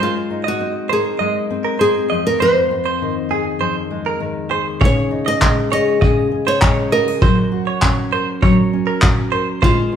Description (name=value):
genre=acoustic pop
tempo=100 BPM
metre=4/4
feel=straight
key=unclear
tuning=A4 = 440 Hz
part: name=nylon-string guitar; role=melody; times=0.0-10.0 s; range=F4 to Eb5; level=-19 LUFS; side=right 1 dB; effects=none
part: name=fingerpicked steel-string acoustic guitar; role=accompaniment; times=0.0-10.0 s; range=F2 to Bb4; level=-20 LUFS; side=left 2 dB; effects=none
part: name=direct-recorded clean electric guitar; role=arpeggios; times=0.0-9.8 s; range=Ab4 to Eb5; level=-22 LUFS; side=right 5 dB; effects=none
part: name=vintage brush drum kit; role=drums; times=4.8-9.8 s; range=handclaps, kick drum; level=-16 LUFS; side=equal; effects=none
room=moderate large studio reverb, RT60 1.2 s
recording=band playing live in one room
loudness=-14 LUFS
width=side -8 dB against mid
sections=0.0-10.0 A section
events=none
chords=0.0 Abadd9; 2.1 Fm7; 4.8 Dbsus2; 7.2 Gb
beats=| 0.00 0.60 1.21 1.81 | 2.41 3.01 3.61 4.22 | 4.82 5.42 6.02 6.62 | 7.22 7.83 8.43 9.03 | 9.63